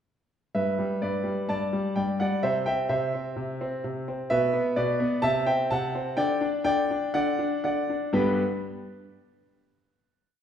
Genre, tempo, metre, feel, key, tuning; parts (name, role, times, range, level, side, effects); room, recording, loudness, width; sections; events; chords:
classical-period piano sonatina; 126 BPM; 4/4; uneven beats, rubato; G major; A4 = 440 Hz
clear concert grand piano; solo; 0.5-8.4 s; G2 to A5; -24 LUFS; equal
wet recital hall reverb, RT60 1.6 s; heard from further back in the room; -24 LUFS; side -8 dB against mid
0.5-8.1 A section; 8.1-10.1 final chord
slowing down 3.4-8.1
0.5 G; 2.4 C; 4.3 N.C.; 5.2 C; 6.2 N.C.; 8.1 G